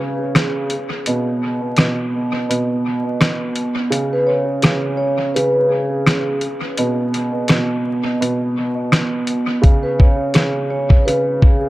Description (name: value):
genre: hip hop, boom-bap hip-hop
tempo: 84 BPM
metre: 4/4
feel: swing 55% on 16ths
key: unclear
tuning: A4 = 439 Hz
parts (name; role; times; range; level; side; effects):
- vibraphone with soft mallets; melody; 0.0-11.7 s; G#4 to C#5; -21 LUFS; equal; high-pass filter, low-pass filter, dub echo
- dark upright piano; accompaniment; 0.0-11.7 s; B2 to C#3; -20 LUFS; right 1 dB; cassette tape, high-pass filter, low-pass filter, dub echo
- dusty soul sampler-style drum kit; drums; 0.3-11.6 s; hi-hat, kick drum, rim click, snare drum; -16 LUFS; equal; dub echo
room: moderate spring reverb, RT60 2.5 s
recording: echo-heavy mix, vinyl crackle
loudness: -15 LUFS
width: side -18 dB against mid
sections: 0.0-11.7 A section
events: break 0.0-9.6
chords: none